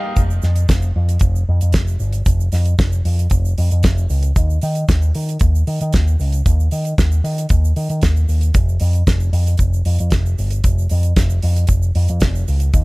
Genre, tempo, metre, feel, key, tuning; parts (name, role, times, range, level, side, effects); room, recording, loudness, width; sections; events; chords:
disco; 115 BPM; 4/4; straight; A4 = 440 Hz
picked electric bass with an envelope filter; bass; 0.2-12.8 s; F1 to Eb3; -16 LUFS; equal
damped 70s drum kit; drums; 0.2-12.8 s; hi-hat, kick drum, snare drum; -18 LUFS; equal
egg shaker; percussion; 0.2-12.8 s; -36 LUFS; right 10 dB
little or no reverb; -14 LUFS; side -25 dB against mid
0.2-12.8 A section
band accent 0.0